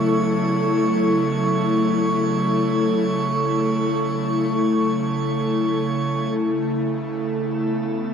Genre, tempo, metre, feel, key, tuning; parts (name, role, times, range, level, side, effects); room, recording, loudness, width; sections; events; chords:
ambient; free time; A4 = 442 Hz
airy breathy pad; sustained chords; 0.0-8.1 s; C#3 to A4; -20 LUFS; left 1 dB; chorus, shimmer reverb
drifting glass-harmonics texture; texture; 0.0-8.1 s; A4 to C#6; -27 LUFS; right 3 dB; chorus, built-in reverb, shimmer reverb
wet lush hall reverb, RT60 3.0 s; dark, warm production; -19 LUFS; side -7 dB against mid
0.0-6.4 A section; 6.4-8.1 B section
0.0 F#m7; 6.4 Aadd9